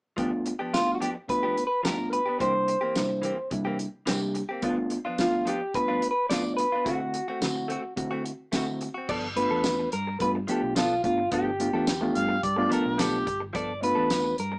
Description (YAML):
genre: straight-eighth soul blues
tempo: 108 BPM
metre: 4/4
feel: straight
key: G mixolydian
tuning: A4 = 440 Hz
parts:
  - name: overdriven reed electric piano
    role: accompaniment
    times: 0.2-14.3 s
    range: G2 to G4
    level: -29 LUFS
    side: equal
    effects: none
  - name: direct-recorded clean electric guitar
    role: stabs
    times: 0.2-14.6 s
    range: E3 to A4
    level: -33 LUFS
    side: equal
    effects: none
  - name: warm soul drum kit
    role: drums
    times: 0.2-14.5 s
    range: crash cymbal, hi-hat, kick drum, snare drum, tambourine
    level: -32 LUFS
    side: equal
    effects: none
  - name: electric guitar through a small old amp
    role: melody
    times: 0.7-14.6 s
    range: F4 to D5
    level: -27 LUFS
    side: equal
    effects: none
  - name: vintage muted fingered electric bass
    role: bass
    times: 9.1-14.6 s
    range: G1 to G2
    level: -35 LUFS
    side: equal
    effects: none
  - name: overdriven harmonica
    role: second line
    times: 12.2-13.4 s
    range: G4 to F5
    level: -27 LUFS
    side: equal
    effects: none
room: light reverb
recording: band playing live in one room, small speaker sound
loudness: -24 LUFS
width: side -30 dB against mid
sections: 0.2-9.1 A section; 9.1-14.6 B section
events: none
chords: 0.2 G7; 2.4 C7; 4.6 G7; 6.9 D7; 9.1 G9